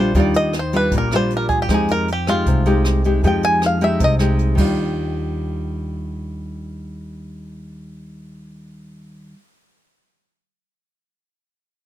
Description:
bossa nova; 156 BPM; 4/4; straight; Eb major; A4 = 440 Hz
bluegrass banjo; melody; 0.0-4.1 s; F4 to Ab5; -20 LUFS; equal
nylon-string guitar; accompaniment; 0.0-9.4 s; Bb2 to G4; -21 LUFS; left 1 dB
upright bass; bass; 0.0-9.3 s; Bb1 to F2; -22 LUFS; right 1 dB
jazz brush drum kit; drums; 0.1-4.7 s; crash cymbal, hi-hat, kick drum, rim click; -25 LUFS; equal
little or no reverb; close, detailed microphones; -16 LUFS; side -13 dB against mid
0.0-4.8 A section; 4.8-7.9 B section
five-string banjo solo 0.0-4.8
0.0 Ebmaj9; 1.7 Fm9; 4.6 Ebmaj9
| 0.14 0.53 0.91 1.30 | 1.69 2.07 2.46 2.84 | 3.23 3.61 4.00 4.38 | 4.77 5.16 5.54 5.93 | 6.31 6.70 7.08 7.47

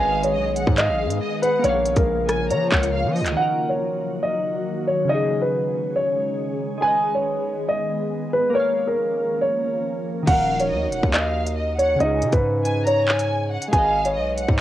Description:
hip hop, drill; 139 BPM; 4/4; half-time; Eb minor; A4 = 440 Hz
dark grand piano; melody; 0.0-14.6 s; Bb4 to Ab5; -21 LUFS; equal; low-pass filter, cassette tape
warm symphonic violin section; second line; 0.0-3.4, 10.3-14.6 s; Eb5 to Bb5; -29 LUFS; equal; cassette tape, tape echo
glassy digital keys; accompaniment; 0.0-14.6 s; Db3 to F5; -29 LUFS; equal; chorus, phaser, low-pass filter, cassette tape
glassy FM pad; sustained chords; 0.0-10.3 s; Db3 to Bb4; -29 LUFS; left 1 dB; ensemble chorus, built-in reverb, cassette tape
hard-hitting 808-style bass; bass; 0.0-3.4, 10.3-14.6 s; Eb1 to F3; -26 LUFS; equal
drill drum kit; drums; 0.2-3.4, 10.3-14.6 s; crash cymbal, handclaps, hi-hat, kick drum, rim click; -22 LUFS; equal; cassette tape
light reverb; home recording on cassette; -19 LUFS; side -13 dB against mid
0.0-3.4 A section; 3.4-10.3 B section; 10.3-14.6 C section
0.0 Abm; 1.6 Bbm; 3.4 Ebm; 5.1 Dbsus2; 6.8 Abm; 8.5 Bbm; 10.3 Ebm; 12.0 Dbsus2; 13.7 Abm
0.35 0.78 1.21 | 1.64 2.07 2.50 2.94 | 3.37 3.80 4.23 4.66 | 5.09 5.53 5.96 6.39 | 6.82 7.25 7.68 8.12 | 8.55 8.98 9.41 9.84 | 10.28 10.71 11.14 11.57 | 12.00 12.43 12.87 13.30 | 13.73 14.16 14.59

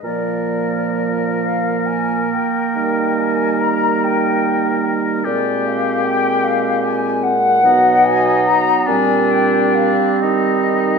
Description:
classical, slow romantic movement for wind quintet; 42-51 BPM (dotted quarters); 6/8; rubato; A4 = 439 Hz
concert flute; melody; 0.0-11.0 s; D5 to Bb5; -18 LUFS; left 4 dB
warm oboe; second line; 0.0-11.0 s; D4 to Bb4; -22 LUFS; left 4 dB
clear French horn; accompaniment; 0.0-11.0 s; F3 to Ab3; -23 LUFS; right 2 dB
warm clarinet; accompaniment; 0.0-11.0 s; Bb3 to C4; -21 LUFS; right 8 dB
dark bassoon; bass; 0.0-11.0 s; Bb2 to Eb3; -22 LUFS; right 3 dB
wet recital hall reverb, RT60 1.3 s; minimal, uncompressed stereo recording; -14 LUFS; side -5 dB against mid
0.0-11.0 A section
0.0 Bb; 2.8 Eb; 5.3 Bbsus2; 7.6 B; 8.9 Bb69; 10.2 Eb
| 0.04 1.41 | 2.75 4.03 | 5.26 6.45 | 7.64 8.88 | 10.23

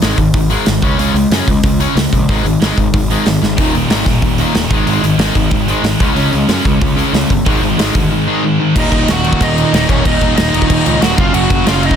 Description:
punk rock; 185 BPM; 4/4; straight; Eb minor; A4 = 439 Hz
crunchy overdriven guitar; riff; 0.0-12.0 s; Eb2 to Db4; -18 LUFS; right 12 dB
distorted electric guitar; riff; 0.0-12.0 s; Eb2 to Db4; -18 LUFS; left 14 dB; overdrive
fuzz picked electric bass; bass; 0.0-11.9 s; Eb1 to Gb2; -18 LUFS; equal; overdrive
big rock drum kit; drums; 0.0-12.0 s; crash cymbal, hi-hat, kick drum, snare drum, splash cymbal; -15 LUFS; equal
tight distorted guitar; riff; 3.6-12.0 s; Eb2 to Db4; -19 LUFS; equal; distortion
bluesy overdriven lead guitar; melody; 8.8-12.0 s; Db4 to Gb5; -17 LUFS; right 2 dB; distortion, tape echo
little or no reverb; dense, heavily limited modern master; -10 LUFS; side -8 dB against mid
0.0-8.8 A section; 8.8-12.0 B section
drum fill 3.4
0.0 Ab5; 0.8 Db5; 2.3 Ab5; 3.6 Eb5; 4.7 Ab5; 6.0 Db5; 7.5 Ab5; 8.8 Ebm; 11.2 Gb5
0.02 0.35 0.67 | 0.99 1.32 1.64 1.97 | 2.29 2.62 2.94 3.26 | 3.59 3.91 4.24 4.56 | 4.88 5.21 5.53 5.85 | 6.18 6.50 6.83 7.15 | 7.47 7.80 8.12 8.44 | 8.77 9.09 9.41 9.73 | 10.06 10.38 10.70 11.03 | 11.35 11.67

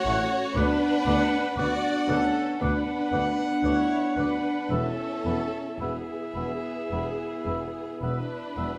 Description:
classical, slow romantic movement for symphony orchestra; 54-60 BPM; 4/4; rubato; A4 = 440 Hz
rich chamber violin section; melody; 0.0-8.8 s; B3 to F#4; -36 LUFS; equal
rich chamber violin section; second line; 0.0-8.8 s; G#4 to D5; -42 LUFS; equal
rich studio viola section; accompaniment; 0.0-8.8 s; G#4 to D5; -38 LUFS; equal
dark French horn section; sustained chords; 0.0-8.7 s; A3 to E4; -33 LUFS; equal
bright trumpet section; stabs; 0.0-8.7 s; E5 to F#5; -35 LUFS; equal
concert flute; second line; 0.1-8.7 s; B5 to D6; -41 LUFS; equal
warm oboe; second line; 0.1-8.7 s; E5 to F#5; -40 LUFS; equal
warm bassoon; accompaniment; 0.1-8.7 s; A3 to B3; -38 LUFS; equal
mellow tuba; bass; 0.1-8.8 s; E1 to D2; -37 LUFS; equal
rich chamber cello section; bass; 0.1-8.7 s; D2 to A2; -37 LUFS; equal
rich chamber double bass section; bass; 0.1-8.6 s; E1 to D2; -37 LUFS; equal
wet recital hall reverb, RT60 1.4 s; -27 LUFS; mono
0.0-8.8 A section
0.0 F#m/A; 0.6 Bm/D; 4.7 E
| 0.56 1.58 2.61 3.64 | 4.71 5.80 6.92 8.02

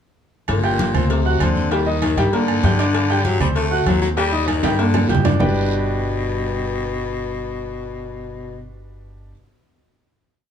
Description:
latin, salsa; 195 BPM; 4/4; straight; A4 = 440 Hz
raspy baritone saxophone; second line; 0.5-8.6 s; Bb2 to A3; -23 LUFS; left 5 dB
upright bass; bass; 0.5-9.3 s; G1 to G2; -22 LUFS; equal
agogo bells and timbales; percussion; 0.5-5.5 s; -28 LUFS; right 10 dB
congas; percussion; 0.5-5.5 s; -24 LUFS; equal
cowbell and bongos; percussion; 0.5-5.5 s; -30 LUFS; left 8 dB
guiro; percussion; 0.5-5.5 s; -38 LUFS; right 6 dB
clear baby grand piano; accompaniment; 0.6-9.3 s; G3 to G6; -22 LUFS; right 1 dB
light reverb; small room ambience; -17 LUFS; side -8 dB against mid
0.5-5.4 montuno (vamp); 5.4-7.9 final chord
drum fill 4.6-5.4
0.5 Gm; 1.1 D7; 1.7 Eb; 2.3 Gm; 3.6 D7; 4.2 Eb; 4.8 Gm; 5.4 G
| 0.48 0.79 1.10 1.41 | 1.71 2.02 2.33 2.63 | 2.94 3.25 3.56 3.87 | 4.17 4.48 4.79 5.09 | 5.40 5.71 6.02 6.32 | 6.63 6.94 7.25 7.55

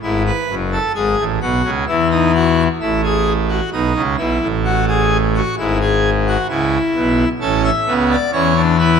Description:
classical, baroque-style 3-part fugue for pipe organ; 65 BPM; 4/4; straight; A4 = 439 Hz
pipe organ, full organ; solo; 0.0-9.0 s; F#1 to E5; -14 LUFS; equal
wet scoring stage reverb, RT60 1.9 s; -14 LUFS; side -6 dB against mid
0.0-9.0 A section
0.0 E; 1.9 F#m7/E; 3.7 B7; 5.6 E/G#; 7.4 A
| 0.03 0.95 1.88 2.81 | 3.74 4.66 5.59 6.50 | 7.42 8.34

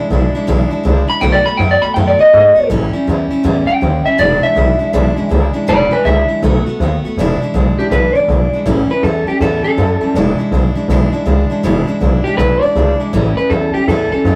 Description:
rock; 161 BPM; 4/4; swing 64% on 8ths; E mixolydian; A4 = 436 Hz
electric guitar through a small old amp; melody; 0.0-14.4 s; G4 to B5; -15 LUFS; equal
picked steel-string acoustic guitar; accompaniment; 0.0-14.4 s; E2 to F#4; -20 LUFS; equal
upright bass; bass; 0.1-14.4 s; E1 to G#2; -17 LUFS; equal
moderate small room reverb, RT60 0.5 s; rough rehearsal-room recording, warm saturation; -13 LUFS; mono
0.0-7.2 A section; 7.2-14.4 B section
clean electric guitar solo 0.0-7.2
0.0 E7; 1.2 B7; 2.7 A7; 4.2 E7; 6.4 B7; 7.2 E7; 8.7 A7; 10.1 E7; 13.1 A7
0.10 0.47 0.84 | 1.21 1.59 1.96 2.33 | 2.70 3.07 3.45 3.82 | 4.19 4.56 4.93 5.31 | 5.68 6.05 6.42 6.80 | 7.17 7.54 7.91 8.29 | 8.66 9.03 9.40 9.78 | 10.15 10.52 10.89 11.27 | 11.64 12.01 12.39 12.76 | 13.13 13.51 13.88 14.25

